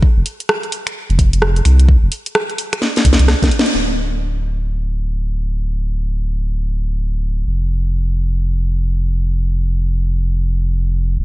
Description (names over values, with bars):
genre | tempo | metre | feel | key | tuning
UK garage, two-step garage | 129 BPM | 4/4 | swing 62% on 16ths | unclear | A4 = 440 Hz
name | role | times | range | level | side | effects
electronic kick drum | drums | 0.0-3.5 s | none | -13 LUFS | equal | none
saturated sub bass | bass | 0.2-11.2 s | D1 to C2 | -15 LUFS | equal | none
garage drum kit | drums | 0.3-3.7 s | finger snaps, hi-hat, rim click, snare drum | -17 LUFS | equal | none
room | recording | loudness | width
digital ambience | nothing above 11.0 kHz | -15 LUFS | side -18 dB against mid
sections
0.0-3.7 A section; 3.7-11.2 B section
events
drum fill 2.8-3.7; band accent 3.6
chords
none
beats
| 0.03 0.49 0.96 1.42 | 1.89 2.35 2.82 3.28 | 3.75 4.21 4.68 5.14 | 5.61 6.07 6.54 7.00 | 7.47 7.93 8.40 8.86 | 9.33 9.79 10.26 10.72 | 11.19